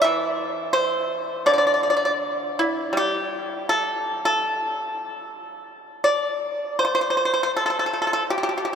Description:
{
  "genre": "chinese traditional",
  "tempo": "71-85 BPM",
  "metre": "4/4",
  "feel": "rubato",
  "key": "A yu mode",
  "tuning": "A4 = 437 Hz",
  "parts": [
    { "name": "pipa", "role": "solo", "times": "0.0-8.7 s", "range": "D3 to E5", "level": "-21 LUFS", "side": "equal", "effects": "none" }
  ],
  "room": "wet cathedral reverb, RT60 5.8 s",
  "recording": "in a vast, echoing space",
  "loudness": "-20 LUFS",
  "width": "side -7 dB against mid",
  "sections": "0.0-6.1 A section; 6.1-8.8 B section",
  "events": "none",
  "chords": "none",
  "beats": "| 0.05 0.76 1.47 2.20 | 2.93 3.68 4.45 5.25 | 6.07 6.84 7.60 8.34"
}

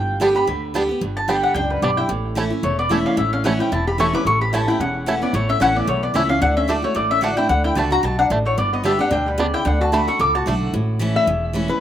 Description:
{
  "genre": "bluegrass",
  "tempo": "222 BPM",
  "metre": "4/4",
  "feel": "swing 56% on 8ths",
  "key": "unclear",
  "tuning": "A4 = 441 Hz",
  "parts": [
    { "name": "mandolin", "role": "melody", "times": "0.0-10.4 s", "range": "B4 to D6", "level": "-21 LUFS", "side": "left 1 dB", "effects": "slapback echo" },
    { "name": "picked steel-string acoustic guitar", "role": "accompaniment", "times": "0.0-11.8 s", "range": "E2 to G4", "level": "-23 LUFS", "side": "right 1 dB", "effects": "slapback echo" },
    { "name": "upright bass", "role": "bass", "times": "0.0-11.7 s", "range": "E1 to D2", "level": "-24 LUFS", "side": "equal", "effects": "none" },
    { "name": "bluegrass banjo", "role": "melody", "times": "0.2-10.5 s", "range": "G3 to E4", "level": "-25 LUFS", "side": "right 4 dB", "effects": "slapback echo" },
    { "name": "lap resonator guitar", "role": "second line", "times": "1.6-11.8 s", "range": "G3 to E5", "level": "-24 LUFS", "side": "left 2 dB", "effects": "slapback echo" }
  ],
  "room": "little or no reverb",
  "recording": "recorded outdoors, with no room sound",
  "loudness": "-17 LUFS",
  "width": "side -10 dB against mid",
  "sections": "0.0-10.7 A section; 10.7-11.8 B section",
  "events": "resonator guitar played with a steel bar solo 10.7-11.8",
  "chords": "0.0 G; 2.1 A; 6.4 D; 8.6 G; 9.7 D; 10.7 A",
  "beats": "0.21 0.48 0.75 | 1.02 1.29 1.56 1.83 | 2.10 2.37 2.64 2.91 | 3.18 3.45 3.72 3.99 | 4.26 4.53 4.80 5.07 | 5.34 5.61 5.88 6.15 | 6.42 6.69 6.96 7.23 | 7.50 7.77 8.04 8.31 | 8.58 8.85 9.12 9.39 | 9.66 9.93 10.20 10.47 | 10.74 11.01 11.28 11.54"
}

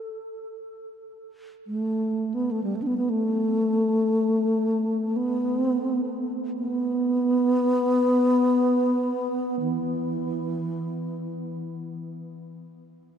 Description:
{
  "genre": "world meditative, free-time meditation music",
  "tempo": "free time",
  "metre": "none",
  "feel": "none",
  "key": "unclear",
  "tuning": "A4 = 442 Hz",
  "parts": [
    { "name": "mellow bass flute", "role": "solo", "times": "0.0-12.0 s", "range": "E3 to A4", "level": "-23 LUFS", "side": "equal", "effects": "none" }
  ],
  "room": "wet cathedral reverb, RT60 6.8 s",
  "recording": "dark, warm production",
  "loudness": "-22 LUFS",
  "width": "side -8 dB against mid",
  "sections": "0.0-12.8 A section",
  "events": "none",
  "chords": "none",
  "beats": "free time"
}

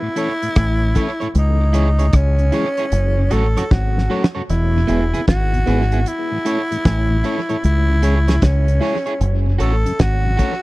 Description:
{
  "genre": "roots reggae",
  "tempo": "76 BPM",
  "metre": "4/4",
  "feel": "swing 65% on 16ths",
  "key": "unclear",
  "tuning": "A4 = 440 Hz",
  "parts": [
    { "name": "raspy tenor saxophone", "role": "melody", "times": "0.0-10.6 s", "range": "C#4 to A4", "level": "-22 LUFS", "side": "equal", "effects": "dub echo" },
    { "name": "mellow tonewheel organ", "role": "accompaniment", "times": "0.0-10.5 s", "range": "E2 to F#4", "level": "-26 LUFS", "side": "left 2 dB", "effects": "slow rotary speaker, tape echo" },
    { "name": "electric guitar at the edge of break-up", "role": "accompaniment", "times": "0.2-10.5 s", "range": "B3 to C#5", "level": "-26 LUFS", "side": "right 4 dB", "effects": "dub echo" },
    { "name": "damped 70s drum kit", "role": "drums", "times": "0.2-10.6 s", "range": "hi-hat, kick drum, rim click, snare drum", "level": "-20 LUFS", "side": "equal", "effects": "tape echo" },
    { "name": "deep dub fingered electric bass", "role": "bass", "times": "0.6-10.4 s", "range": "E1 to C#2", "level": "-16 LUFS", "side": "equal", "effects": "none" }
  ],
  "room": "little or no reverb",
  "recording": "dry, close 1970s-style studio recording",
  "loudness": "-15 LUFS",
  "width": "side -20 dB against mid",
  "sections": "0.0-10.6 A section",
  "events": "drum fill 3.7-4.5",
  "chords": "0.0 A; 1.3 C#m; 2.9 F#m; 4.5 E; 6.1 A; 7.6 C#m; 9.2 F#m",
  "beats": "0.55 | 1.34 2.13 2.92 3.70 | 4.49 5.28 6.06 6.85 | 7.63 8.42 9.21 9.99"
}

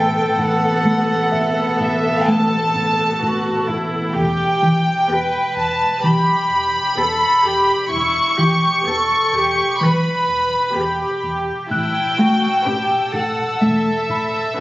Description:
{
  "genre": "cinematic",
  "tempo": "64 BPM",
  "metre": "4/4",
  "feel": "straight",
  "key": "E dorian",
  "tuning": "A4 = 440 Hz",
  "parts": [
    { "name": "warm studio violin section", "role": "melody", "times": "0.0-14.6 s", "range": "E5 to C#6", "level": "-19 LUFS", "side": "equal", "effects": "none" },
    { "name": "rich studio viola section", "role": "accompaniment", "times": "0.0-14.6 s", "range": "B3 to B4", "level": "-24 LUFS", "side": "equal", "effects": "none" },
    { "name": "rubbery square bass", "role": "riff", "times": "0.0-14.4 s", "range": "E2 to A3", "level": "-22 LUFS", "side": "equal", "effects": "none" },
    { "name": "dark studio double bass section", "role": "bass", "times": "0.0-14.4 s", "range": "E1 to B1", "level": "-26 LUFS", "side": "equal", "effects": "none" },
    { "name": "warm studio cello section", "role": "bass", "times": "0.0-14.6 s", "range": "E4 to B4", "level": "-22 LUFS", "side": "equal", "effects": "none" },
    { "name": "warm sub bass", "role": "drone", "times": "0.0-14.6 s", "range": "E1", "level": "-42 LUFS", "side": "equal", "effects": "none" },
    { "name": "small celesta", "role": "texture", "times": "0.0-4.2, 11.7-14.6 s", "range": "E5 to F#6", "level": "-26 LUFS", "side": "equal", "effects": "none" },
    { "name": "clear studio violin section", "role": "texture", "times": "11.7-14.6 s", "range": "A5 to E6", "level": "-30 LUFS", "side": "left 1 dB", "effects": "none" }
  ],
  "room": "moderate scoring stage reverb, RT60 1.5 s",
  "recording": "recorded on a phone in the room, studio ambience, compression, nothing above 7.8 kHz",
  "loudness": "-15 LUFS",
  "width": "side -17 dB against mid",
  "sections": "0.0-14.6 A section",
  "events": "none",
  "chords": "0.0 Aadd9/E; 4.2 Em; 11.7 Aadd9/E",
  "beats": "| 0.39 1.32 2.28 3.22 | 4.16 5.09 6.04 6.98 | 7.92 8.86 9.81 10.76 | 11.71 12.66 13.62 14.59"
}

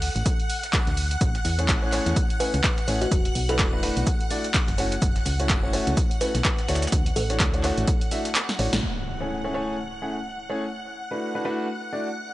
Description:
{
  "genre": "piano house",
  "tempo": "126 BPM",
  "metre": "4/4",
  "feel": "swing 58% on 16ths",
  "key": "A major",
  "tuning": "A4 = 439 Hz",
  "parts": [
    { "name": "kalimba", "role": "melody", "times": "0.0-7.8 s", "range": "F#4 to B4", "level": "-32 LUFS", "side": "equal", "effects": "analog delay" },
    { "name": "string machine, violins", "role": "sustained chords", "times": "0.0-12.3 s", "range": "F#5 to F#6", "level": "-34 LUFS", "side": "equal", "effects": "ensemble chorus, sidechain pumping" },
    { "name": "solid FM bass", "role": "bass", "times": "0.0-8.8 s", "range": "E1 to E2", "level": "-26 LUFS", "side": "equal", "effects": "sidechain pumping" },
    { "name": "dusty soul sampler-style drum kit", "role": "drums", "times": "0.0-8.6 s", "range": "hi-hat, shaker, snare drum", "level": "-36 LUFS", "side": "right 1 dB", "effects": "none" },
    { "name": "punchy analog drum machine", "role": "drums", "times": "0.0-8.9 s", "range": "crash cymbal, handclaps, hi-hat, snare drum", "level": "-28 LUFS", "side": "equal", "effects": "low-pass filter on hats, low-pass filter on cymbals, low-pass filter on snare, low-pass filter on room" },
    { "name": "electronic kick drum", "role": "drums", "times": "0.3-8.0 s", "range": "none", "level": "-24 LUFS", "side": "equal", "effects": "none" },
    { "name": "warm concert grand piano", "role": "riff", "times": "1.6-12.1 s", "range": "A3 to F#5", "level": "-29 LUFS", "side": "equal", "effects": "sidechain pumping" },
    { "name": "impact", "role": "sound effects", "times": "8.8-10.7 s", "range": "none", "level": "-35 LUFS", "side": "equal", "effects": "none" }
  ],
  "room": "light reverb, digital ambience",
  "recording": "dry, gritty hardware recording, nothing above 10.6 kHz",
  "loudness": "-22 LUFS",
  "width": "side -16 dB against mid",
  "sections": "0.0-8.8 A section; 8.8-12.3 B section",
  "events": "kick drops out 8.4-8.8; drum fill 8.5-8.8; band accent 8.7; impact 8.8-10.7",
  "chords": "0.0 D; 1.2 Amaj7; 3.1 E9sus4; 4.8 F#m7; 6.7 Dmaj9; 8.8 Amaj7; 10.7 E9sus4",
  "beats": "0.26 0.73 | 1.21 1.69 2.16 2.64 | 3.12 3.59 4.07 4.54 | 5.02 5.50 5.97 6.45 | 6.92 7.40 7.88 8.35 | 8.83 9.30 9.78 10.26 | 10.73 11.21 11.69 12.16"
}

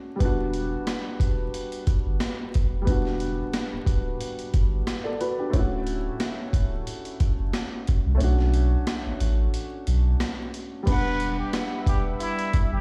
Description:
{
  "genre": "hip hop, boom-bap hip-hop",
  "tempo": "90 BPM",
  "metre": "4/4",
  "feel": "swing 56% on 16ths",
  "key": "E dorian",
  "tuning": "A4 = 440 Hz",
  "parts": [
    { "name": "dark upright piano", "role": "accompaniment", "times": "0.0-12.8 s", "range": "G3 to F#5", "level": "-33 LUFS", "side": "equal", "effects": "cassette tape, high-pass filter, low-pass filter" },
    { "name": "saturated sub bass", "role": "bass", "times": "0.2-12.8 s", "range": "D1 to C2", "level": "-27 LUFS", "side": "equal", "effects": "none" },
    { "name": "boom bap sampler-style drum kit", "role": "drums", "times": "0.2-12.7 s", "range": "crash cymbal, hi-hat, kick drum, rim click, snare drum", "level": "-28 LUFS", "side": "equal", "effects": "none" },
    { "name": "trumpet with plunger mute", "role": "melody", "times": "10.9-12.8 s", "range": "E4 to B4", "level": "-32 LUFS", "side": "equal", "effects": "high-pass filter, low-pass filter" },
    { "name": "lush unison pad", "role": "sustained chords", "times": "11.3-12.8 s", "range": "G3 to B5", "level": "-38 LUFS", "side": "equal", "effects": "chorus, high-pass filter, low-pass filter" }
  ],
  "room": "little or no reverb",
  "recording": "played on a big sound system in a bare room, large studio reverb, vinyl crackle",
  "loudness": "-25 LUFS",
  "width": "mono",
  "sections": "0.0-10.9 A section; 10.9-12.8 B section",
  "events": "break 0.0; kick muted 8.2-10.9",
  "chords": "0.2 Em7; 5.5 Dmaj7; 8.2 Bm7; 10.9 Em7",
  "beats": "| 0.20 0.87 1.54 2.20 | 2.87 3.54 4.20 4.87 | 5.54 6.20 6.87 7.54 | 8.20 8.87 9.54 10.20 | 10.87 11.54 12.20"
}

